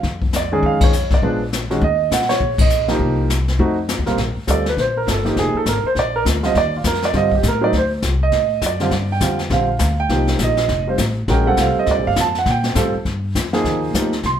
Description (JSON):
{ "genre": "jazz piano trio", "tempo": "203 BPM", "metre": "4/4", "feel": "swing 61% on 8ths", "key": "Bb major", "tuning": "A4 = 440 Hz", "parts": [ { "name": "warm grand piano", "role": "melody", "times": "0.0-14.4 s", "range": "Bb2 to C6", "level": "-18 LUFS", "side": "right 3 dB", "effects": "none" }, { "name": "upright bass", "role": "bass", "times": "0.0-14.4 s", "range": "F1 to Bb2", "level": "-21 LUFS", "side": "left 1 dB", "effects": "none" }, { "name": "jazz brush drum kit", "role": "drums", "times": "0.0-14.4 s", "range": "brushed snare drum, hi-hat, kick drum, ride cymbal, snare drum", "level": "-22 LUFS", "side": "left 3 dB", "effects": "none" } ], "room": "moderate large studio reverb, RT60 0.8 s", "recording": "band playing live in one room", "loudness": "-15 LUFS", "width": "side -9 dB against mid", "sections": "0.0-4.2 A section; 4.2-13.7 B section", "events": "band accent 0.8, 2.6; grand piano solo 4.2-14.4", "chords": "0.0 Bb (rootless); 1.2 Bb7b9; 1.8 Eb5; 3.0 Cm7; 3.6 F7b9; 4.2 Bb69; 5.4 Fm7; 6.0 Bb; 6.6 Ebmaj9#11; 7.7 D7b9; 8.9 Gm7; 10.1 Cm7; 10.7 F; 11.3 Bbsus2; 13.7 Ab6" }